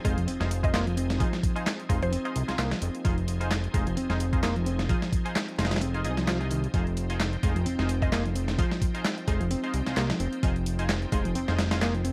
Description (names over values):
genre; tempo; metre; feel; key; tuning
breakbeat, breaks; 130 BPM; 4/4; swing 55% on 16ths; F minor; A4 = 440 Hz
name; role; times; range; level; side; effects
bright tonewheel organ; sustained chords; 0.0-12.1 s; F3 to G5; -42 LUFS; equal; overdrive, chorus vibrato, slow rotary speaker, sidechain pumping
overdriven reed electric piano; riff; 0.0-12.1 s; Eb3 to C4; -34 LUFS; equal; tape echo
band-passed chord stab; stabs; 0.0-11.9 s; Eb4 to Eb5; -39 LUFS; equal; analog chorus, tape echo
fat analog bass; bass; 0.0-12.1 s; F1 to C2; -32 LUFS; equal; none
dusty soul sampler-style drum kit; drums; 0.0-12.1 s; hi-hat, kick drum, snare drum; -32 LUFS; equal; studio reverb
punchy analog drum machine; drums; 0.1-12.1 s; handclaps, hi-hat; -41 LUFS; equal; overdrive, studio reverb
mallet-like synth pluck; melody; 0.6-2.7, 8.0-8.2 s; C5 to Eb5; -38 LUFS; equal; chorus, AM radio sound, tape echo
room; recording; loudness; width
little or no reverb; vinyl crackle; -28 LUFS; mono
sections
0.0-12.1 A section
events
none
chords
0.0 Fm7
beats
0.28 0.74 | 1.20 1.66 2.12 2.59 | 3.05 3.51 3.97 4.43 | 4.89 5.36 5.82 6.28 | 6.74 7.20 7.66 8.12 | 8.59 9.05 9.51 9.97 | 10.43 10.89 11.36 11.82